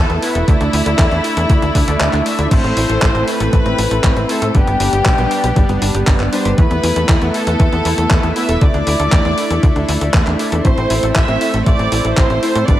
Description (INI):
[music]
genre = italo disco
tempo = 118 BPM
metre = 4/4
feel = straight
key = A minor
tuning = A4 = 440 Hz
[part]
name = rich chamber violin section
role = melody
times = 0.0-12.8 s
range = E4 to E6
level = -21 LUFS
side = left 1 dB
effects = tape echo
[part]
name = lush unison pad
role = sustained chords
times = 0.0-12.8 s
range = G3 to E4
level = -23 LUFS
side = equal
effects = chorus
[part]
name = analog pluck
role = arpeggios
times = 0.0-12.8 s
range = G3 to D5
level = -26 LUFS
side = left 3 dB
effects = chorus, tape echo
[part]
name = analog synth brass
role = stabs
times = 0.0-12.8 s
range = G3 to D5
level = -21 LUFS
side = right 2 dB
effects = chorus
[part]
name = tight sequencer bass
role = bass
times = 0.0-12.8 s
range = E1 to A2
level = -18 LUFS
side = equal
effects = none
[part]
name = clean 12-bit digital drum machine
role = drums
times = 0.1-12.8 s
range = crash cymbal, handclaps, hi-hat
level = -22 LUFS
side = equal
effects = gated reverb
[part]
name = electronic kick drum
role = drums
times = 0.5-12.8 s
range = none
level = -14 LUFS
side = equal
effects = none
[sound]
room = light reverb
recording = none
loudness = -12 LUFS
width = side -13 dB against mid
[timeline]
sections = 0.0-12.8 A section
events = kick drops out 2.0-2.5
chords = 0.5 Dsus2; 2.5 Am; 4.5 G; 6.6 Esus4; 8.6 Dsus2; 10.6 Am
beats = | 0.48 0.99 1.50 2.00 | 2.51 3.02 3.53 4.04 | 4.55 5.05 5.56 6.07 | 6.58 7.09 7.60 8.11 | 8.62 9.12 9.63 10.14 | 10.65 11.16 11.66 12.17 | 12.68